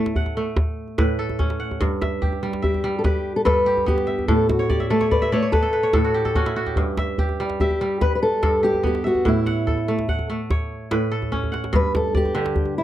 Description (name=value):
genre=west african traditional, West African string and xylophone music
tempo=97 BPM (dotted quarters)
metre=12/8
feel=straight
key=G lydian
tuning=A4 = 440 Hz
part: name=fingerpicked steel-string acoustic guitar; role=melody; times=0.0-12.8 s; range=E4 to C#5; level=-21 LUFS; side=left 1 dB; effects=slapback echo
part: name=kora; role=arpeggios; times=0.0-12.8 s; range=G2 to F#5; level=-24 LUFS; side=right 2 dB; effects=none
part: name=djembe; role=percussion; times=0.1-12.8 s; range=none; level=-24 LUFS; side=equal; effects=none
room=light reverb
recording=dry, close 1970s-style studio recording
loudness=-19 LUFS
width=side -12 dB against mid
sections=0.0-11.7 A section; 11.7-12.8 B section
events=kora fill 4.6-6.8; drum fill 11.3-11.7; steel-string acoustic guitar solo 11.7-12.8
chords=0.0 A; 1.8 G; 4.3 A; 6.8 G; 9.3 A; 11.7 G5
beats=0.57 1.19 | 1.81 2.43 3.05 3.67 | 4.29 4.91 5.53 6.15 | 6.77 7.39 8.01 8.63 | 9.25 9.87 10.49 11.11 | 11.73 12.35